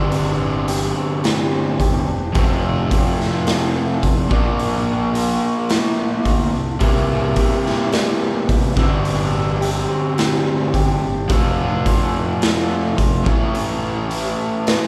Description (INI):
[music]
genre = quiet-loud alternative rock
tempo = 107 BPM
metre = 4/4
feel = straight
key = unclear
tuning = A4 = 445 Hz
[part]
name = fingerpicked swing-style acoustic guitar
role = arpeggios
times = 0.0-14.9 s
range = F2 to G4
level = -31 LUFS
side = equal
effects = none
[part]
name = raw garage guitar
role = riff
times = 0.0-14.9 s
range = F2 to F4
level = -22 LUFS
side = equal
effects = overdrive
[part]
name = fuzz fingered electric bass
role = bass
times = 0.0-14.3 s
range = E1 to C3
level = -28 LUFS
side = equal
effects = overdrive
[part]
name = raw garage drum kit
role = drums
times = 0.1-14.8 s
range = hi-hat, kick drum, snare drum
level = -22 LUFS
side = equal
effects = none
[sound]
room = moderate large studio reverb, RT60 1.2 s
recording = band playing live in one room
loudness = -19 LUFS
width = mono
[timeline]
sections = 0.0-14.9 A section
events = half time 0.0-14.9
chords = 0.0 Gsus4; 2.4 F; 4.3 Bb; 6.8 C7; 8.8 Gsus4; 11.3 F; 13.3 A